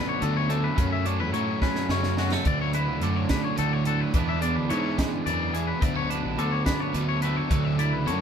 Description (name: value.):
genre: math rock and midwest emo.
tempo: 71 BPM (dotted quarters).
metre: 6/8.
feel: straight.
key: D lydian.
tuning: A4 = 440 Hz.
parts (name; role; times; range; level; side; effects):
twelve-string electric guitar; accompaniment; 0.0-8.2 s; D2 to E4; -31 LUFS; right 9 dB; none.
twangy electric guitar; arpeggios; 0.0-8.2 s; F#4 to E5; -30 LUFS; left 7 dB; none.
crunchy overdriven guitar; riff; 0.0-8.2 s; D3 to G#4; -30 LUFS; left 1 dB; none.
fuzz fingered electric bass; bass; 0.2-8.2 s; A1 to A2; -28 LUFS; equal; overdrive.
crisp fusion drum kit; drums; 0.2-8.2 s; hi-hat, kick drum, snare drum; -28 LUFS; equal; none.
room: light reverb.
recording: band playing live in one room.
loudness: -23 LUFS.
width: side -7 dB against mid.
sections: 0.0-8.2 A section.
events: drum fill 1.6-2.5.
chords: 0.0 Bm7; 0.8 F#m7; 2.5 Dmaj9; 4.1 E7; 5.8 Bm7; 7.5 Dmaj9.